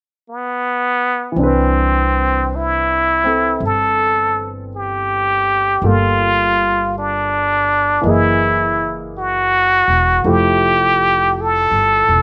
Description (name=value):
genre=jazz ballad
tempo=54 BPM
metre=4/4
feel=swing 68% on 8ths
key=C major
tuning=A4 = 440 Hz
part: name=trumpet with plunger mute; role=melody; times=0.3-12.2 s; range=B3 to A4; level=-17 LUFS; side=equal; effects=none
part: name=warm grand piano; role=accompaniment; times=1.3-12.2 s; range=E3 to D#5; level=-24 LUFS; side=equal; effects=slapback echo
part: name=upright bass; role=bass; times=1.4-12.2 s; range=E1 to C2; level=-25 LUFS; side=equal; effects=none
room=little or no reverb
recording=recorded outdoors, with no room sound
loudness=-16 LUFS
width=mono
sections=0.0-1.4 A section; 1.4-12.2 B section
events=none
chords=0.0 N.C.; 1.4 Cmaj9; 5.8 Gm9; 8.0 F#13; 10.2 Fmaj9